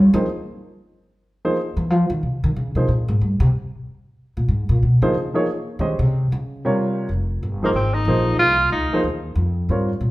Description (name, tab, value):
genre	modal jazz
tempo	184 BPM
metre	4/4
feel	swing 63% on 8ths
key	F minor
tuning	A4 = 441 Hz
part	upright bass	bass	0.0-10.1 s	F1 to C4	-19 LUFS	equal	none
part	warm baby grand piano	accompaniment	0.1-2.9, 5.0-9.9 s	C3 to Eb5	-22 LUFS	equal	none
part	breathy tenor saxophone	melody	7.7-9.0 s	Bb3 to F4	-19 LUFS	right 1 dB	none
room	wet large studio reverb, RT60 1.2 s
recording	band playing live in one room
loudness	-18 LUFS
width	side -18 dB against mid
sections	0.0-7.1 A section; 7.1-10.1 B section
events	upright bass solo 0.0-7.1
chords	0.0 Fm11; 1.9 Bbm11; 7.1 Fm11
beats	0.27 | 0.59 0.92 1.24 1.57 | 1.89 2.22 2.54 2.87 | 3.19 3.52 3.84 4.17 | 4.49 4.82 5.14 5.47 | 5.79 6.12 6.44 6.77 | 7.09 7.42 7.74 8.07 | 8.39 8.72 9.04 9.37 | 9.70 10.02